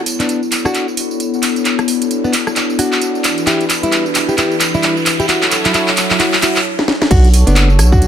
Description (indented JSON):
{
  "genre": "UK garage, two-step garage",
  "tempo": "132 BPM",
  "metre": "4/4",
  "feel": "swing 60% on 16ths",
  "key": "B minor",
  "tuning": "A4 = 441 Hz",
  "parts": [
    { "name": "warm analog pad", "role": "sustained chords", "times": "0.0-8.1 s", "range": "E3 to D5", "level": "-23 LUFS", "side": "left 2 dB", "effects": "chorus, sidechain pumping" },
    { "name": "riser", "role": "sound effects", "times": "0.0-6.7 s", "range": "none", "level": "-27 LUFS", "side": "right 2 dB", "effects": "none" },
    { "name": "warbly tape-like pad", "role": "texture", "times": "0.0-6.7 s", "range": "F#3 to C#5", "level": "-20 LUFS", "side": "left 2 dB", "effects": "chorus, built-in reverb, sidechain pumping" },
    { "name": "house drum kit", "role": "drums", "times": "0.1-8.1 s", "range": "crash cymbal, handclaps, hi-hat, rim click, snare drum, tambourine", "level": "-16 LUFS", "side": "right 1 dB", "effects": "small room ambience" },
    { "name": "nylon-string guitar", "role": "melody", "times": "0.2-8.1 s", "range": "F#3 to G4", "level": "-19 LUFS", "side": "equal", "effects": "dub echo" },
    { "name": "saturated sub bass", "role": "bass", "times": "7.1-8.1 s", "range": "F#1 to B1", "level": "-10 LUFS", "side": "equal", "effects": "none" },
    { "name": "electronic kick drum", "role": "drums", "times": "7.1-8.0 s", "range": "none", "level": "-11 LUFS", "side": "equal", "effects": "small room ambience" }
  ],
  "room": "light reverb",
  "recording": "none",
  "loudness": "-12 LUFS",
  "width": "side -9 dB against mid",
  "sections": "0.0-7.1 A section",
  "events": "build-up 0.0-7.1; drum fill 0.0-6.7, 6.8-7.1; filter sweep on analog synth pad 0.0-7.1; stop 6.7-7.1",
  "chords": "0.0 Bm9; 3.2 Em9; 5.3 F#m7; 7.1 Bm9"
}